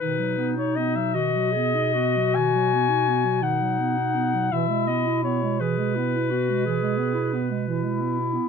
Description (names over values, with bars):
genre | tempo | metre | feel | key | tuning
classical, lyrical piece for single-reed quartet | 48-60 BPM (dotted quarters) | 12/8 | rubato | B major | A4 = 443 Hz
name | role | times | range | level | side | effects
dark soprano saxophone | melody | 0.0-8.3 s | B4 to G#5 | -25 LUFS | left 6 dB | none
dark clarinet | second line | 0.0-8.5 s | D#3 to E4 | -28 LUFS | right 8 dB | none
mellow clarinet | accompaniment | 0.0-8.5 s | D#4 to G#4 | -27 LUFS | left 4 dB | none
dark bass clarinet | bass | 0.0-8.4 s | B2 | -28 LUFS | right 3 dB | none
room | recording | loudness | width
light reverb | minimal, uncompressed stereo recording | -21 LUFS | side -6 dB against mid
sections
0.0-8.5 A section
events
none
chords
0.0 B; 4.5 E/B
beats
| 0.00 1.14 2.34 3.42 | 4.52 5.60 6.63 7.65